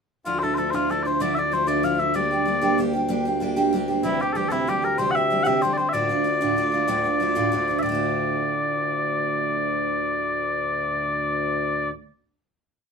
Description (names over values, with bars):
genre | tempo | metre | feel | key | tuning
celtic folk, Celtic slide | 126 BPM (dotted quarters) | 12/8 | straight | D minor | A4 = 440 Hz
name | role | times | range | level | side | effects
mellow small bagpipes | melody | 0.3-11.9 s | E4 to F#5 | -23 LUFS | left 1 dB | none
picked steel-string acoustic guitar | accompaniment | 0.3-12.1 s | D2 to G4 | -26 LUFS | right 3 dB | none
hand-pumped harmonium | drone | 0.3-11.9 s | D2 | -29 LUFS | left 3 dB | none
room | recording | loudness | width
moderate small room reverb, RT60 0.5 s | minimal, uncompressed stereo recording | -21 LUFS | side -5 dB against mid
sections
0.3-7.8 A section; 7.8-11.7 final chord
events
none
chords
0.3 Dmadd9; 2.1 Gm; 4.0 C; 5.9 Dm